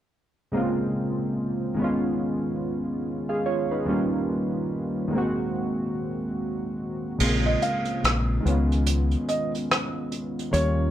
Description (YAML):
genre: lo-fi hip hop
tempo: 72 BPM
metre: 4/4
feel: swing 60% on 16ths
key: unclear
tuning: A4 = 440 Hz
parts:
  - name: warbly lo-fi synth keys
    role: accompaniment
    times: 0.5-10.9 s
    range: Db3 to F5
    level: -25 LUFS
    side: equal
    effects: chorus, plate reverb
  - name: deep dub fingered electric bass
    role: bass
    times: 7.2-10.9 s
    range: Bb1 to Eb2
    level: -23 LUFS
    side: equal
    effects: none
  - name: vintage brush drum kit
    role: drums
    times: 7.2-10.8 s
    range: crash cymbal, hi-hat, rim click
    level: -27 LUFS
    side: right 1 dB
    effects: none
  - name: felt-muted upright piano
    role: melody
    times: 7.5-10.9 s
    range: Db5 to F5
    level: -28 LUFS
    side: right 1 dB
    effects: plate reverb
room: moderate studio reverb, RT60 0.5 s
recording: none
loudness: -23 LUFS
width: side -11 dB against mid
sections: 0.5-7.2 A section; 7.2-10.9 B section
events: kick muted 7.2-10.9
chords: 0.5 Bbm7; 1.8 Db7; 3.9 Eb9; 5.1 Ab9; 7.2 Bbm7; 8.4 Db7